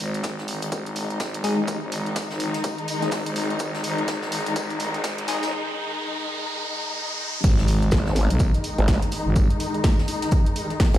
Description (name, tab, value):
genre	bass house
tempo	125 BPM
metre	4/4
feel	swing 60% on 16ths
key	unclear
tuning	A4 = 440 Hz
part	warm studio string section	sustained chords	0.0-11.0 s	D#3 to D#4	-28 LUFS	left 2 dB	sidechain pumping, low-pass filter
part	growling FM bass	bass	0.0-9.5 s	G#1 to B1	-27 LUFS	equal	tube saturation, sidechain pumping, high-pass filter
part	house drum kit	drums	0.0-11.0 s	crash cymbal, hi-hat, snare drum	-31 LUFS	right 1 dB	high-pass filter on hats, high-pass filter on cymbals, high-pass filter on snare, high-pass filter on room
part	jazz brush drum kit	drums	0.0-10.9 s	hi-hat, snare drum, tambourine	-36 LUFS	left 1 dB	high-pass filter on hats, high-pass filter on snare, high-pass filter on perc, high-pass filter on room
part	riser and impact	sound effects	0.0-9.4 s	none	-33 LUFS	right 1 dB	none
part	electronic kick drum	drums	0.2-10.9 s	none	-21 LUFS	equal	high-pass filter on kick, high-pass filter on room
part	band-passed chord stab	stabs	1.4-5.4 s	G#3 to D#5	-28 LUFS	left 2 dB	phaser, sidechain pumping, digital delay
part	growl bass	bass	7.9-11.0 s	G#1	-20 LUFS	equal	chorus, overdrive, sidechain pumping
room	light reverb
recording	played on a big sound system in a bare room, stone room reverb, high-pass filter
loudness	-22 LUFS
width	side -13 dB against mid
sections	0.0-7.4 A section; 7.4-11.0 B section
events	build-up 0.0-7.4; riser 0.0-7.4; filter sweep on synth stab 0.0-7.4; filter sweep 0.0-7.4; drum fill 3.6-5.5; break 5.5-7.4; drop 7.4-11.0; impact 7.4-9.4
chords	0.0 G#5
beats	0.24 0.72 1.20 | 1.68 2.16 2.64 3.12 | 3.60 4.08 4.56 5.04 | 5.52 6.00 6.48 6.96 | 7.44 7.92 8.40 8.88 | 9.36 9.84 10.32 10.80